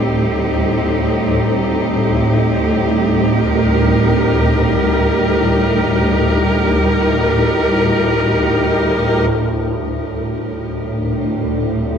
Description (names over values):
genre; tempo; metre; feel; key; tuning
dark ambient drone; free time; none; none; unclear; A4 = 443 Hz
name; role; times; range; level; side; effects
rich studio cello section; sustained chords; 0.0-12.0 s; G3 to Bb4; -16 LUFS; equal; none
swarming drone; drone; 0.0-12.0 s; D2 to A2; -16 LUFS; equal; built-in reverb
bronze singing bowl; texture; 9.3-12.0 s; Bb4; -40 LUFS; left 5 dB; none
room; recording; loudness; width
wet plate reverb, RT60 2.5 s; none; -13 LUFS; side -7 dB against mid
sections
0.0-9.3 A section; 9.3-12.0 B section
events
none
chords
0.0 Cm; 2.0 Eb